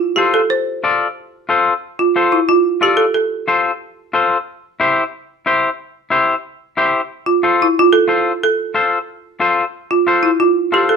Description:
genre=latin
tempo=182 BPM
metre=4/4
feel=straight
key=F major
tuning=A4 = 440 Hz
part: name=folk marimba with hard mallets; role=melody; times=0.0-3.6, 7.3-11.0 s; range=E4 to C5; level=-14 LUFS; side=right 3 dB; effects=none
part: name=twangy electric guitar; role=accompaniment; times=0.2-11.0 s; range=E4 to D5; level=-15 LUFS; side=left 3 dB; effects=none
room=light reverb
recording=minimal, uncompressed stereo recording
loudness=-14 LUFS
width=side -6 dB against mid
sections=0.0-9.7 A section; 9.7-11.0 B section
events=none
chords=0.0 F; 4.5 C; 7.1 F

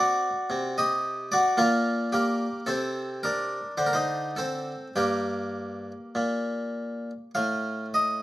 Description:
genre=classical, baroque-style suite movement for harpsichord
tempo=50-56 BPM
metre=3/4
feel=rubato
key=G minor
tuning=A4 = 441 Hz
part: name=harpsichord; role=solo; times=0.0-8.2 s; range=G2 to F5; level=-25 LUFS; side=equal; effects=none
room=moderate stone room reverb, RT60 0.9 s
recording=none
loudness=-25 LUFS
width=side -15 dB against mid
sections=0.0-8.2 A section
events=none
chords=0.5 Cmadd9; 1.6 N.C.; 2.7 Bbmaj9/C; 3.8 D5; 5.0 Gm

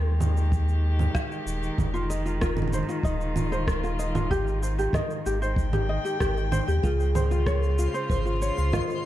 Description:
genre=folktronica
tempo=95 BPM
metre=4/4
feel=straight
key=Ab major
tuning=A4 = 440 Hz
part: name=dark string quartet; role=sustained chords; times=0.0-9.1 s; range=Db3 to G5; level=-33 LUFS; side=left 1 dB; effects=none
part: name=warm sub bass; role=bass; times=0.0-8.8 s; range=Eb1 to Eb2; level=-26 LUFS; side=equal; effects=none
part: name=electronic congas, shaker and rim click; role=drums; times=0.2-9.0 s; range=none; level=-31 LUFS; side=right 2 dB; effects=overdrive
part: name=kick drum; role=drums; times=0.5-8.9 s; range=none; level=-29 LUFS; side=equal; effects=none
part: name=ukulele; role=arpeggios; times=1.9-9.0 s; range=F4 to Eb5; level=-30 LUFS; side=left 1 dB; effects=digital delay
part: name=kalimba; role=second line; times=6.8-9.0 s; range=Ab4 to Eb5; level=-32 LUFS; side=right 2 dB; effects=digital delay
part: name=twinkling granular texture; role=texture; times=7.4-9.1 s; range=C5 to C6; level=-39 LUFS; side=equal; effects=built-in reverb
room=light reverb, studio reverb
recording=dark, warm production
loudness=-23 LUFS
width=side -13 dB against mid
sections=0.0-9.1 A section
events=none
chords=0.0 Ab5; 1.8 Fm7; 4.3 Abmaj7; 6.8 Dbmaj7

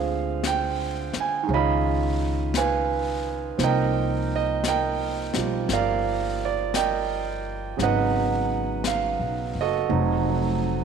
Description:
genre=jazz ballad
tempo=57 BPM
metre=4/4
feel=swing 69% on 8ths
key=unclear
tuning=A4 = 435 Hz
part: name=clear grand piano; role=accompaniment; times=0.0-10.8 s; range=Db3 to Cb6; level=-24 LUFS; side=right 8 dB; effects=none
part: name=upright bass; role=bass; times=0.0-10.8 s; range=F1 to D2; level=-28 LUFS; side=left 3 dB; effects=none
part: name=jazz brush drum kit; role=drums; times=0.4-10.8 s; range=brushed snare drum, hi-hat, snare drum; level=-33 LUFS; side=left 8 dB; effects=none
room=moderate echo chamber reverb, RT60 2.2 s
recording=1960s-style stereo with parts hard left and right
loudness=-22 LUFS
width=side -6 dB against mid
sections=0.0-10.8 A section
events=none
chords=0.0 Dm7b5; 1.5 Db9; 3.6 Cm11; 7.8 Abm7; 9.9 F7b9

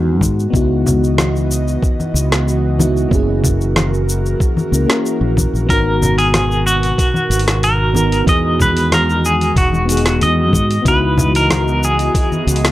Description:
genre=sunset chillout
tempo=93 BPM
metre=4/4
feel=straight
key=unclear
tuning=A4 = 440 Hz
part: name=mellow FM electric piano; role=accompaniment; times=0.0-12.7 s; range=A#3 to A#4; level=-21 LUFS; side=moving between left 5 dB and right 4 dB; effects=chorus, auto-pan, tape echo
part: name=airy breathy pad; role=sustained chords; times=0.0-12.7 s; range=B2 to D#5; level=-22 LUFS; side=right 1 dB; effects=chorus
part: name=mellow fretless electric bass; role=bass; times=0.0-12.7 s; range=E1 to G#2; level=-16 LUFS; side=equal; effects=none
part: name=deep house drum kit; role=drums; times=0.2-12.7 s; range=hi-hat, shaker, snare drum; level=-20 LUFS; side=equal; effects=none
part: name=electronic kick drum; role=drums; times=0.2-12.3 s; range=none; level=-17 LUFS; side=equal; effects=none
part: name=congas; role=percussion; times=0.2-12.4 s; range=none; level=-21 LUFS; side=left 1 dB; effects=none
part: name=clean electric guitar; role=melody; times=5.7-12.7 s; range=F#4 to D#5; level=-17 LUFS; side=equal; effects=tremolo, tape echo
room=little or no reverb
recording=dry, gritty hardware recording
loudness=-12 LUFS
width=side -15 dB against mid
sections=0.0-12.7 A section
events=none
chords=0.0 Emaj9; 0.5 C#m11; 3.1 F#7; 5.7 G#m9; 8.3 Emaj9; 10.9 C#m11

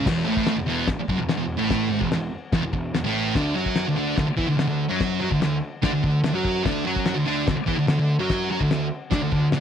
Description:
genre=garage rock duo or trio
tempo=146 BPM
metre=4/4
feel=straight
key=unclear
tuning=A4 = 440 Hz
part: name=thick fuzz guitar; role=riff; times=0.0-9.6 s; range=E2 to F#4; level=-22 LUFS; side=right 1 dB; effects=distortion
part: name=fuzz picked electric bass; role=bass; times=0.0-9.6 s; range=E1 to F#2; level=-31 LUFS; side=equal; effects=overdrive
part: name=cloth-damped thuddy drum kit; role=drums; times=0.1-9.6 s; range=crash cymbal, kick drum, snare drum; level=-27 LUFS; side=left 2 dB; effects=none
room=light reverb, studio ambience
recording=1960s-style stereo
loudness=-21 LUFS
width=side -8 dB against mid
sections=0.1-9.6 A section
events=none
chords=0.1 N.C.; 3.3 D

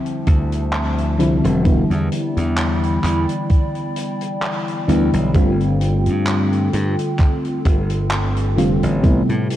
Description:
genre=vaporwave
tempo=65 BPM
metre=4/4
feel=swing 55% on 16ths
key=unclear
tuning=A4 = 440 Hz
part: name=mellow FM electric piano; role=accompaniment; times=0.0-9.6 s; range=C3 to F4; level=-19 LUFS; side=left 1 dB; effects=analog chorus, tape echo
part: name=warbly tape-like pad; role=sustained chords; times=0.0-9.6 s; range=F3 to B5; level=-28 LUFS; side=equal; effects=chorus, built-in reverb
part: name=swinging big-band drum kit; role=drums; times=0.1-9.6 s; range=handclaps, hi-hat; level=-28 LUFS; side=right 1 dB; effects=gated reverb
part: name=glassy slap bass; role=bass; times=0.3-9.5 s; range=E1 to A2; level=-20 LUFS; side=equal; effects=none
part: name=electronic kick drum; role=drums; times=0.3-9.2 s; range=none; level=-15 LUFS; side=equal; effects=none
room=light reverb, small room ambience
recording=cassette tape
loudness=-16 LUFS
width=side -13 dB against mid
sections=0.0-9.6 A section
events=none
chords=0.0 Dm11; 1.7 Em7; 5.3 G9sus4; 9.0 Am9

